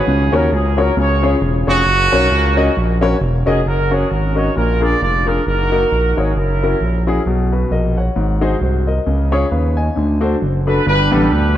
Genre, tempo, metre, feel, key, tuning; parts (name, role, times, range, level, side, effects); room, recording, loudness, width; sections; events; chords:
uptempo gospel; 134 BPM; 4/4; swing 58% on 8ths; F# major; A4 = 441 Hz
warm horn section; melody; 0.0-7.2, 10.7-11.6 s; A#3 to D5; -18 LUFS; right 2 dB
clear upright piano; accompaniment; 0.1-11.5 s; G2 to G#5; -18 LUFS; left 2 dB
smooth gliding synth bass; bass; 0.1-11.6 s; E1 to D#2; -17 LUFS; equal
moderate concert hall reverb, RT60 1.9 s; -13 LUFS; side -12 dB against mid
0.0-3.7 A section; 3.7-10.9 B section
0.1 F#/C#; 1.0 C#; 1.9 F#; 4.6 A#7; 5.5 D#m/F#; 6.4 F#7; 7.3 Bmaj9; 8.2 G#7; 9.1 C#; 10.0 D7; 10.9 G